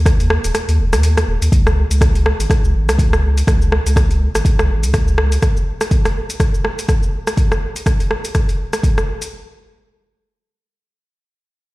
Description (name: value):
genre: afro house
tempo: 123 BPM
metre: 4/4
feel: swing 57% on 16ths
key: unclear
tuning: A4 = 441 Hz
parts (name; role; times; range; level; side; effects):
- warm sub bass; bass; 0.0-5.4 s; Eb1 to Eb2; -15 LUFS; equal; sidechain pumping
- afro-pop drum kit; drums; 0.1-9.3 s; hi-hat, rim click, shaker; -20 LUFS; equal; none
- electronic kick drum; drums; 0.1-8.9 s; none; -15 LUFS; equal; none
room: light reverb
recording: played on a big sound system in a bare room, stone room reverb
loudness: -14 LUFS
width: side -20 dB against mid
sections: 0.0-1.5 A section; 1.5-9.3 B section; 9.3-11.7 C section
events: kick drops out 0.5-1.5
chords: none